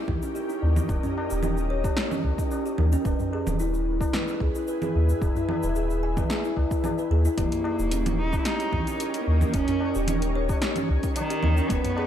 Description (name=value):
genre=organic downtempo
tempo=111 BPM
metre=4/4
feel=swing 53% on 16ths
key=Eb phrygian dominant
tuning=A4 = 440 Hz
part: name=ethereal airy pad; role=sustained chords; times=0.0-12.1 s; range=Db4 to E5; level=-34 LUFS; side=left 1 dB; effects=ensemble chorus, built-in reverb, sidechain pumping
part: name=kalimba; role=arpeggios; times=0.1-12.1 s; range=Db4 to G#5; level=-29 LUFS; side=equal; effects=tape echo
part: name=warm sub bass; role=bass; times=0.1-11.8 s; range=Eb1 to Eb2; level=-24 LUFS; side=equal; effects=sidechain pumping
part: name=deep house drum kit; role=drums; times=0.1-11.9 s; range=congas, hi-hat, shaker, snare drum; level=-31 LUFS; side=right 1 dB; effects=overdrive
part: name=electronic kick drum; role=drums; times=0.1-11.8 s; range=none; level=-29 LUFS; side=equal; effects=none
part: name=tabla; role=percussion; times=0.6-12.1 s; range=none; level=-36 LUFS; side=left 2 dB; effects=none
part: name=warm cello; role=melody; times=7.4-12.1 s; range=Eb3 to Fb4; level=-30 LUFS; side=right 1 dB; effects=tape echo
part: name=twinkling granular texture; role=texture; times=7.6-12.1 s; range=Db4 to Db5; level=-39 LUFS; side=left 1 dB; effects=built-in reverb
room=light reverb, digital ambience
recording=dark, warm production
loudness=-23 LUFS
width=side -10 dB against mid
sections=0.0-12.1 A section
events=none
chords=0.0 Eb7; 3.1 E/Eb; 7.4 Eb7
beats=0.35 | 0.89 1.43 1.97 2.51 | 3.05 3.59 4.13 4.67 | 5.21 5.76 6.30 6.84 | 7.38 7.92 8.46 9.00 | 9.54 10.08 10.62 11.16 | 11.70